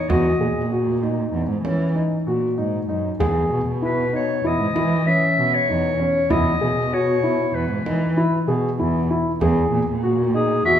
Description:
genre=contemporary instrumental, chamber music in an uneven meter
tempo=97 BPM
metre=5/4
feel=straight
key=E lydian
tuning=A4 = 440 Hz
part: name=warm clarinet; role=melody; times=0.0-10.8 s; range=G#4 to E5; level=-22 LUFS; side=left 2 dB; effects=none
part: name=dark baby grand piano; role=arpeggios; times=0.1-10.8 s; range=C#4 to G#4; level=-23 LUFS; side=left 1 dB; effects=none
part: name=dark cello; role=bass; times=0.1-10.8 s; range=E2 to E3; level=-22 LUFS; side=right 2 dB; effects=none
part: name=frame drum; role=percussion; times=0.1-9.7 s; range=none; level=-28 LUFS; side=right 1 dB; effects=none
room=wet recital hall reverb, RT60 1.7 s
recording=recorded in a church or concert hall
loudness=-18 LUFS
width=side -9 dB against mid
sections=0.0-10.8 A section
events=none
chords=0.0 D#m/E; 3.2 Emaj7; 9.4 D#m/E

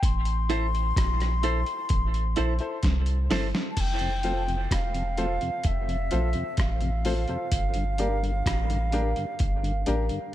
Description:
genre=dub reggae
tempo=64 BPM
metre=4/4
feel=straight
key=F major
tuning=A4 = 442 Hz
part: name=mellow silver concert flute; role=melody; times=0.0-10.3 s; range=E5 to C6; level=-32 LUFS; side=equal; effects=dub echo
part: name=soft dub sub bass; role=bass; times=0.0-10.1 s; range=E1 to C2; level=-27 LUFS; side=equal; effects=none
part: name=dusty soul sampler-style drum kit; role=drums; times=0.0-10.3 s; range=crash cymbal, hi-hat, kick drum, rim click, snare drum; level=-29 LUFS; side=equal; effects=overdrive
part: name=clean electric guitar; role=accompaniment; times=0.5-3.5 s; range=E4 to C5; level=-34 LUFS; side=right 7 dB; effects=dub echo
part: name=warm upright piano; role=stabs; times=0.5-10.0 s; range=D4 to C5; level=-34 LUFS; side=left 3 dB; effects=dub echo
part: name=mellow tonewheel organ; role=accompaniment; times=4.0-10.2 s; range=F2 to D4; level=-34 LUFS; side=left 2 dB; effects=overdrive, chorus vibrato, slow rotary speaker, dub echo
room=light reverb, digital ambience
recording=none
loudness=-24 LUFS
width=side -13 dB against mid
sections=0.0-3.8 A section; 3.8-10.3 B section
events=break 0.0-3.8; drum fill 2.8-3.8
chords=0.0 Am; 3.8 F; 7.5 Gm

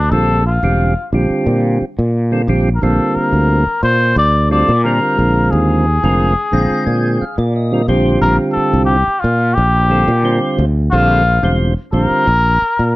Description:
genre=electric jazz fusion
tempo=89 BPM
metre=4/4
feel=straight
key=unclear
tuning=A4 = 442 Hz
part: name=trumpet with cup mute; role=melody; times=0.0-13.0 s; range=D4 to D5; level=-16 LUFS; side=left 2 dB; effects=slapback echo
part: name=sustaining fretless electric bass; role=bass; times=0.0-12.9 s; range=E1 to Bb2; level=-14 LUFS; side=equal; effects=none
part: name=percussive tonewheel organ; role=accompaniment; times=0.1-12.3 s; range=D3 to Bb5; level=-17 LUFS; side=right 2 dB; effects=slow rotary speaker
room=light reverb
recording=none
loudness=-12 LUFS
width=side -19 dB against mid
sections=0.0-13.0 A section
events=tonewheel organ fill 6.2-8.2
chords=0.1 F; 2.8 Bbmaj9; 5.2 Ab69; 7.9 Gm9/Bb; 10.9 Bbmaj9

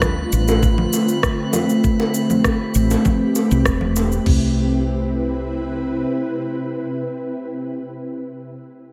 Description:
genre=sunset chillout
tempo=99 BPM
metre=4/4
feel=straight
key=C major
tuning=A4 = 440 Hz
part: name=ethereal airy pad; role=sustained chords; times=0.0-7.4 s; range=C3 to B4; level=-23 LUFS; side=equal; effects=ensemble chorus, built-in reverb
part: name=woody fretless electric bass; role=bass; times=0.0-6.0 s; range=E1 to D2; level=-23 LUFS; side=equal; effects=none
part: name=electronic rim click, congas and shaker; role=drums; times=0.0-4.2 s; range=none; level=-26 LUFS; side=equal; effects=small room ambience
part: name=smooth R&B drum kit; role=drums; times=0.0-4.4 s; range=crash cymbal, kick drum, toms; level=-22 LUFS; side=equal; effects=small room ambience
part: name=bongos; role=percussion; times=0.0-4.1 s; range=none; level=-29 LUFS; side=equal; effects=none
part: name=drifting glass-harmonics texture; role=texture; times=0.0-4.3 s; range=B4 to B5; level=-35 LUFS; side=equal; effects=chorus, built-in reverb
room=moderate plate reverb, RT60 1.6 s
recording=dreamy mix soaked in reverb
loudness=-19 LUFS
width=mono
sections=0.0-4.3 A section; 4.3-6.7 B section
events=none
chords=0.0 Dm7; 1.8 Am7; 4.3 Cmaj7

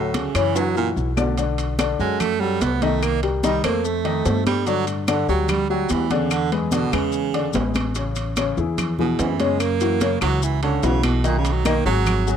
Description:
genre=Afro-Cuban jazz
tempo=146 BPM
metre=4/4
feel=straight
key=B minor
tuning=A4 = 440 Hz
part: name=clear baritone saxophone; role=second line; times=0.0-12.4 s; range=F#2 to B3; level=-23 LUFS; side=right 10 dB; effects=none
part: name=dark baby grand piano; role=accompaniment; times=0.0-12.4 s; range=C#3 to D#5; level=-24 LUFS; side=left 8 dB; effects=none
part: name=upright bass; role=bass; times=0.0-12.4 s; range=G#1 to G2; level=-24 LUFS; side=equal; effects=none
part: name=congas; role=percussion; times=0.1-12.4 s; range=none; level=-27 LUFS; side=left 1 dB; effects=none
part: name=maracas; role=percussion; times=0.1-12.4 s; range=none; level=-35 LUFS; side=left 13 dB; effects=none
part: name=timbales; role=percussion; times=0.1-12.3 s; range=none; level=-30 LUFS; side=right 7 dB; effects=none
part: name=claves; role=percussion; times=0.4-12.3 s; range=none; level=-31 LUFS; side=left 16 dB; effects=none
room=studio ambience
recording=dry, close 1970s-style studio recording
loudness=-18 LUFS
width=side -8 dB against mid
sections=0.0-1.4 A section; 1.4-12.4 A section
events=baritone saxophone solo 0.0-12.4; drum fill 0.6-1.4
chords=0.0 Dmaj7; 0.6 Bmadd11; 1.4 Bm7; 3.0 Cm7; 3.8 F9; 4.7 G5; 6.3 E7; 8.0 Amaj7; 9.6 F#7; 11.2 B

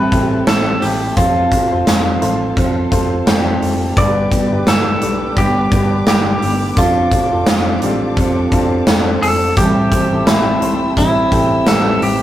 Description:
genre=piano-driven pop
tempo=86 BPM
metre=4/4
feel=swing 56% on 16ths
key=A minor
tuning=A4 = 442 Hz
part: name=clean electric guitar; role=melody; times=0.0-12.2 s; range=E4 to D5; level=-18 LUFS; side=equal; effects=none
part: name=warm upright piano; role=accompaniment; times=0.0-12.2 s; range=G2 to D5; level=-23 LUFS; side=left 1 dB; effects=none
part: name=warm studio string section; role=sustained chords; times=0.0-12.2 s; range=C4 to E6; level=-29 LUFS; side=left 3 dB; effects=none
part: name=picked steel-string acoustic guitar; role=riff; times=0.0-12.2 s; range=G2 to A4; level=-19 LUFS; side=right 2 dB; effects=none
part: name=vintage muted fingered electric bass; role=bass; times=0.0-12.2 s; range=F1 to C2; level=-23 LUFS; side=equal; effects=none
part: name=huge arena drum kit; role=drums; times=0.1-12.2 s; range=hi-hat, kick drum, snare drum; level=-16 LUFS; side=equal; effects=none
room=moderate studio ambience, RT60 0.5 s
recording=rough rehearsal-room recording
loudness=-12 LUFS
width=side -12 dB against mid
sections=0.0-12.2 A section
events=none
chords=0.0 Am7; 1.2 F; 4.0 G; 6.8 Dm7/F; 9.6 Am7

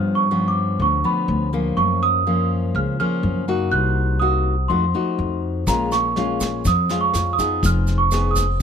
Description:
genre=bossa nova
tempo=123 BPM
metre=4/4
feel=straight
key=unclear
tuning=A4 = 442 Hz
part: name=celesta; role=melody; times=0.0-8.6 s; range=Bb5 to Gb6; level=-22 LUFS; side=right 4 dB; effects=none
part: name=nylon-string guitar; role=accompaniment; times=0.0-8.6 s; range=F2 to Ab4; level=-23 LUFS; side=left 2 dB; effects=none
part: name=upright bass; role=bass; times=0.0-8.6 s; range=F1 to G2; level=-22 LUFS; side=left 1 dB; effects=none
part: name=vintage brush drum kit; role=drums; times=5.7-8.6 s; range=kick drum, rim click, snare drum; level=-27 LUFS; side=equal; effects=none
part: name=tube shaker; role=percussion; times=5.7-8.6 s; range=none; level=-31 LUFS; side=right 4 dB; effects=none
room=little or no reverb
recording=close, detailed microphones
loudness=-18 LUFS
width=side -7 dB against mid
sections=0.0-8.6 A section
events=none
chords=0.0 G7#11; 1.8 Gbmaj7; 3.7 Cm7b5; 4.7 F7b9; 5.7 Bbm7; 7.6 Fm7b5

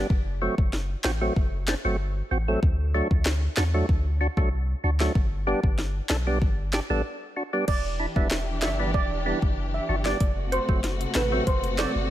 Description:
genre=dancehall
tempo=95 BPM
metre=4/4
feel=straight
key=E minor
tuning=A4 = 438 Hz
part: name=percussive tonewheel organ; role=accompaniment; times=0.0-11.9 s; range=F#3 to A4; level=-29 LUFS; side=right 1 dB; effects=overdrive, slow rotary speaker
part: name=punchy sub bass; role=bass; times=0.0-12.1 s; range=E1 to E2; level=-27 LUFS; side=equal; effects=none
part: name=afro-pop drum kit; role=drums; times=0.1-11.9 s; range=crash cymbal, handclaps, hi-hat, kick drum, snare drum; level=-26 LUFS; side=equal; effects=none
part: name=steel pan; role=melody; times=7.7-11.9 s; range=B4 to E5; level=-30 LUFS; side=right 4 dB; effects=ping-pong delay
part: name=warm studio string section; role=sustained chords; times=7.7-12.1 s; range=C3 to G4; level=-32 LUFS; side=left 2 dB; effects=sidechain pumping
room=little or no reverb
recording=none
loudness=-23 LUFS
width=side -13 dB against mid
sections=0.0-7.7 A section; 7.7-12.1 B section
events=break 7.0-7.7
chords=0.1 F#dim; 2.6 D; 5.2 G; 7.7 Em7; 10.2 F#dim

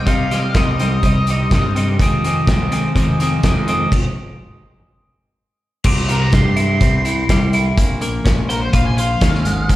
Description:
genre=indie rock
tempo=124 BPM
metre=4/4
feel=straight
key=F minor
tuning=A4 = 440 Hz
part: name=octave-fuzz lead guitar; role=melody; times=0.0-1.7, 6.1-9.8 s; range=Bb4 to C6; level=-24 LUFS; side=left 1 dB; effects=distortion, slapback echo, digital delay
part: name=twelve-string electric guitar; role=riff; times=0.0-9.8 s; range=F2 to C5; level=-19 LUFS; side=equal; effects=spring reverb, slapback echo
part: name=growling picked electric bass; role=bass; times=0.1-9.8 s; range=Ab1 to C3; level=-19 LUFS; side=equal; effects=overdrive
part: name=loose indie drum kit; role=drums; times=0.1-9.8 s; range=crash cymbal, hi-hat, kick drum, snare drum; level=-18 LUFS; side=equal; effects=none
room=little or no reverb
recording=live gig heard through the venue's PA, recital hall reverb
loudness=-14 LUFS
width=side -15 dB against mid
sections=0.0-5.8 A section; 5.8-9.8 B section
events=stop 3.9-5.8; lead electric guitar solo 5.8-9.8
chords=0.0 Cm; 2.0 Fm7; 5.8 C; 7.8 Bbmadd9

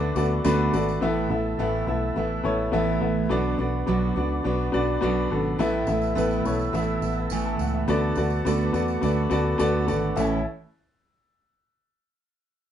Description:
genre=piano-driven pop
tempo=105 BPM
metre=4/4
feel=straight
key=unclear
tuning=A4 = 441 Hz
part: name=warm upright piano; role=accompaniment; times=0.0-10.4 s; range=A1 to A5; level=-25 LUFS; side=left 2 dB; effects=none
part: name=flute section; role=sustained chords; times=0.0-10.4 s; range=A4 to E6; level=-37 LUFS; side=right 2 dB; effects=none
part: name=picked steel-string acoustic guitar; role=riff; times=0.0-10.4 s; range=A2 to F#4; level=-28 LUFS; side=right 5 dB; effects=none
part: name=vintage muted fingered electric bass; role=bass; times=0.0-10.4 s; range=G#1 to E2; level=-28 LUFS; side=equal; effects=none
part: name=tambourine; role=percussion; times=0.2-1.0, 5.6-10.4 s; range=none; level=-46 LUFS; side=right 4 dB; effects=none
room=moderate studio reverb, RT60 0.6 s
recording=band playing live in one room, nothing above 10.6 kHz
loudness=-22 LUFS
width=side -10 dB against mid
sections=0.0-1.0 A section; 1.0-10.2 B section; 10.2-12.4 C section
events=none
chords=0.0 D6; 1.0 Asus2; 3.3 Bm; 5.6 Asus2; 7.9 D6; 10.2 A

